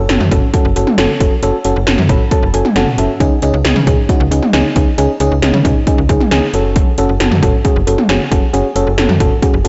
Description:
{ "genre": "synth-pop", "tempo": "135 BPM", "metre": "4/4", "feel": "straight", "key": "unclear", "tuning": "A4 = 439 Hz", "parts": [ { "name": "slap-like FM bass", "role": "bass", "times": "0.0-9.7 s", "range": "F#1 to C#3", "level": "-18 LUFS", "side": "equal", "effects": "none" }, { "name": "FM electric piano", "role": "accompaniment", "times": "0.1-9.7 s", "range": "C#4 to B5", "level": "-18 LUFS", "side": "equal", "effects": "phaser" }, { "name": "80s electronic pad drums", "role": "drums", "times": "0.1-9.7 s", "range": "hi-hat, kick drum, snare drum, toms", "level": "-16 LUFS", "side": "equal", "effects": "gated reverb on snare and toms, overdrive" } ], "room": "light reverb", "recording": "blown-out, overdriven recording, overdrive, nothing above 7.8 kHz", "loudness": "-13 LUFS", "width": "mono", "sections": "0.0-9.7 A section", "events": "FM electric piano fill 1.9-3.2", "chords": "0.0 F#m; 3.2 C#sus2; 6.5 F#madd9" }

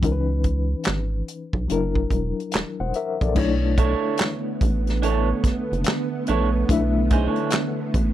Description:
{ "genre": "R&B, neo-soul", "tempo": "72 BPM", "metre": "4/4", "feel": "swing 63% on 16ths", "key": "B minor from 3.4 s", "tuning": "A4 = 440 Hz", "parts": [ { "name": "reed electric piano", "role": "accompaniment", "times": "0.0-8.1 s", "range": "E3 to F#5", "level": "-26 LUFS", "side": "left 6 dB", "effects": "overdrive, fast tremolo" }, { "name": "rubbery square bass", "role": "bass", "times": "0.0-8.1 s", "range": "E1 to C#2", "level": "-23 LUFS", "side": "right 1 dB", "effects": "none" }, { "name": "warm soul drum kit", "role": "drums", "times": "0.0-8.1 s", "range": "crash cymbal, handclaps, hi-hat, kick drum, snare drum", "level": "-23 LUFS", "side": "equal", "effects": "none" }, { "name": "soft string machine", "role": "sustained chords", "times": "3.7-8.1 s", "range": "D3 to B3", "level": "-26 LUFS", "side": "right 2 dB", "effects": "ensemble chorus" }, { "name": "electric guitar through a small old amp", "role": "second line", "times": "3.8-7.5 s", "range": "D4 to C#5", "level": "-26 LUFS", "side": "right 8 dB", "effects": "spring reverb" } ], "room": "little or no reverb", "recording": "none", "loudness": "-20 LUFS", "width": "side -12 dB against mid", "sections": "0.0-3.4 A section; 3.4-8.1 B section", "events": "none", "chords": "0.0 C#m9; 1.7 F#aug7; 3.4 Bm11" }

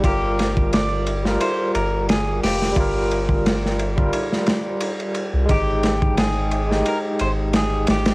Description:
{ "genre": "trip hop", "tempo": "88 BPM", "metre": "4/4", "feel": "swing 54% on 16ths", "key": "G phrygian", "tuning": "A4 = 440 Hz", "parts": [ { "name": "overdriven tine electric piano", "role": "accompaniment", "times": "0.0-8.1 s", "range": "G3 to G5", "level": "-23 LUFS", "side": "equal", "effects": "tremolo, low-pass filter, cassette tape, plate reverb, tape echo" }, { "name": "soft dub sub bass", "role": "bass", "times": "0.0-8.1 s", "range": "F1 to C2", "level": "-24 LUFS", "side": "equal", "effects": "tube saturation" }, { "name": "crunchy breakbeat drum kit", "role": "drums", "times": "0.0-8.1 s", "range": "hi-hat, kick drum, ride cymbal, snare drum", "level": "-22 LUFS", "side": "equal", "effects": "cassette tape" }, { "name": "electric guitar at the edge of break-up", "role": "melody", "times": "0.1-8.1 s", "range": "G4 to D5", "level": "-26 LUFS", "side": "equal", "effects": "tape echo" } ], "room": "moderate booth ambience, RT60 0.3 s", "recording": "home recording on cassette, vinyl crackle", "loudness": "-18 LUFS", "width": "side -23 dB against mid", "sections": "0.0-8.1 A section", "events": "filter sweep on tine electric piano 0.0-8.1", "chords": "0.0 Gm7; 5.5 Abmaj7(no3)" }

